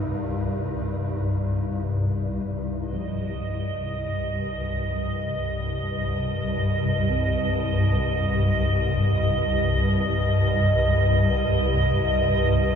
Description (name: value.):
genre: dark ambient drone.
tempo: free time.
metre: none.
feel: none.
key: C minor.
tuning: A4 = 440 Hz.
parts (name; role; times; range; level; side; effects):
dark analog pad; sustained chords; 0.0-2.8 s; Eb4 to F5; -38 LUFS; left 1 dB; wide subtle chorus, shimmer reverb.
swarming drone; drone; 0.0-12.8 s; C2 to G2; -23 LUFS; left 1 dB; built-in reverb.
icy glass pad; texture; 3.0-12.8 s; Eb5; -26 LUFS; right 3 dB; chorus, built-in reverb, shimmer reverb.
gamelan-type bossed gongs; arpeggios; 2.9-12.8 s; F3 to C4; -41 LUFS; equal; none.
room: moderate huge ambient reverb, RT60 7.8 s.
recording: none.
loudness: -22 LUFS.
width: side -7 dB against mid.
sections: 0.0-2.8 A section; 2.8-12.8 B section.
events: none.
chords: 0.0 Ebsus2; 2.8 Cm.